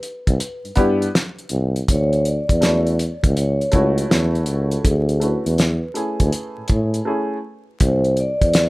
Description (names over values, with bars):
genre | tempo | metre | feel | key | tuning
hip hop, jazz-hop | 81 BPM | 4/4 | swing 66% on 16ths | unclear | A4 = 441 Hz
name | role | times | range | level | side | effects
vibraphone with soft mallets | melody | 0.0-8.7 s | Ab4 to D5 | -24 LUFS | equal | plate reverb, tape echo
cloth-damped thuddy drum kit | drums | 0.0-8.7 s | hi-hat, kick drum, snare drum | -19 LUFS | equal | none
breathy tuba | bass | 0.3-8.7 s | C2 to A2 | -20 LUFS | equal | none
warm upright piano | accompaniment | 0.8-7.4 s | A3 to Ab4 | -23 LUFS | equal | plate reverb
room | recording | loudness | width
light reverb | rough home demo mix, vinyl crackle | -17 LUFS | side -21 dB against mid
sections
0.0-8.7 A section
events
break 7.1-7.8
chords
0.0 Cmaj9; 1.9 Dmaj9; 7.8 Cadd9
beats
0.40 1.14 | 1.88 2.62 3.36 4.10 | 4.84 5.58 6.33 7.07 | 7.81 8.55